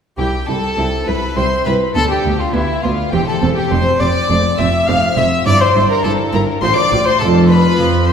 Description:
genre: classical, baroque-style concerto movement with solo episodes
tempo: 103 BPM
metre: 3/4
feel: straight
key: C major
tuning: A4 = 439 Hz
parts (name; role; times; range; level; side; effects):
- rich chamber violin section; melody; 0.2-8.1 s; E5 to F6; -23 LUFS; left 3 dB; none
- warm violin; melody; 0.2-8.1 s; E4 to F5; -18 LUFS; left 1 dB; none
- rich chamber violin section; second line; 0.2-8.1 s; E4 to F5; -21 LUFS; left 2 dB; none
- dark chamber viola section; accompaniment; 0.2-8.1 s; B3 to F4; -23 LUFS; equal; none
- rich chamber double bass section; bass; 0.2-8.1 s; E1 to F2; -19 LUFS; right 2 dB; none
- warm chamber cello section; bass; 0.2-8.1 s; C2 to F3; -19 LUFS; right 1 dB; none
- lute; accompaniment; 0.8-8.1 s; D2 to Bb4; -26 LUFS; equal; none
room: wet scoring stage reverb, RT60 2.0 s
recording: heard from further back in the room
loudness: -12 LUFS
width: side -7 dB against mid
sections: 0.2-8.1 A section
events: none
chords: 0.2 C; 1.9 G7/D; 3.1 C/E; 3.7 F; 5.5 C7/G; 6.6 F/A; 7.2 F

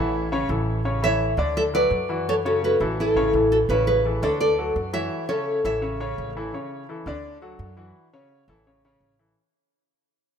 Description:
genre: latin, salsa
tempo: 169 BPM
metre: 4/4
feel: straight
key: A major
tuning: A4 = 440 Hz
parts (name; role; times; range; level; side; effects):
- nylon-string guitar; melody; 0.0-6.0 s; E4 to E5; -22 LUFS; equal; none
- clear grand piano; accompaniment; 0.0-9.3 s; C#3 to D5; -28 LUFS; left 1 dB; none
- upright bass; bass; 0.0-9.3 s; G#1 to F#2; -29 LUFS; right 1 dB; none
room: moderate plate reverb, RT60 3.7 s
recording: rough home demo mix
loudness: -20 LUFS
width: side -7 dB against mid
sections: 0.0-3.7 A section; 3.7-9.4 B section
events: fade-out 3.7-9.4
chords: 0.1 A; 1.6 Dadd9; 2.3 F#m7; 3.0 A; 4.4 Dadd9; 5.1 F#m7; 5.8 A; 7.2 Dadd9; 8.0 F#m7; 8.7 A

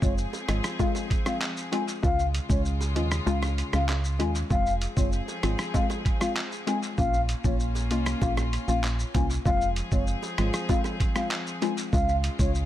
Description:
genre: dancehall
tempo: 97 BPM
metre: 4/4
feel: straight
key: F minor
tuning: A4 = 440 Hz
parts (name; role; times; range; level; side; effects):
- mellow hollow baroque flute; melody; 0.0-12.5 s; Db5 to Ab5; -32 LUFS; left 2 dB; dub echo
- hollow square pluck; accompaniment; 0.0-12.6 s; Ab3 to F4; -31 LUFS; left 4 dB; chorus
- warm studio string section; sustained chords; 0.0-12.7 s; Db3 to Ab4; -37 LUFS; left 2 dB; sidechain pumping
- organ-like FM bass; bass; 0.0-12.7 s; F1 to Eb2; -27 LUFS; right 1 dB; none
- lo-fi sampler-style drum kit; drums; 0.0-12.7 s; handclaps, hi-hat, kick drum, rim click, shaker; -28 LUFS; right 1 dB; overdrive, dub echo
- bongos; percussion; 0.3-11.8 s; none; -40 LUFS; right 10 dB; none
room: studio reverb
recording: echo-heavy mix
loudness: -24 LUFS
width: side -13 dB against mid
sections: 0.0-12.7 A section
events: kick muted 3.3-4.5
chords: 0.0 Fm; 2.0 Db; 4.5 Fm; 7.0 Bbm; 9.5 Fm; 11.9 Db

